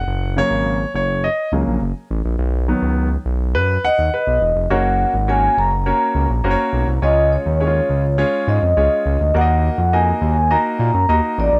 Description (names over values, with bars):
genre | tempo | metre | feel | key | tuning
uptempo 1960s-style soul | 104 BPM | 4/4 | straight | F# major | A4 = 440 Hz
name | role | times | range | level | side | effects
clear concert grand piano | accompaniment | 0.0-11.5 s | C#3 to F#5 | -24 LUFS | equal | none
smooth synth bass | bass | 0.0-11.6 s | E1 to A#2 | -21 LUFS | equal | none
vibraphone with soft mallets | melody | 3.9-11.6 s | C#5 to A#5 | -20 LUFS | equal | none
room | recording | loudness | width
light reverb | none | -18 LUFS | mono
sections
0.0-4.7 A section; 4.7-11.6 B section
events
grand piano solo 0.0-4.7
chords
0.1 F#; 2.4 B; 4.7 F#; 7.0 C#; 9.3 D#m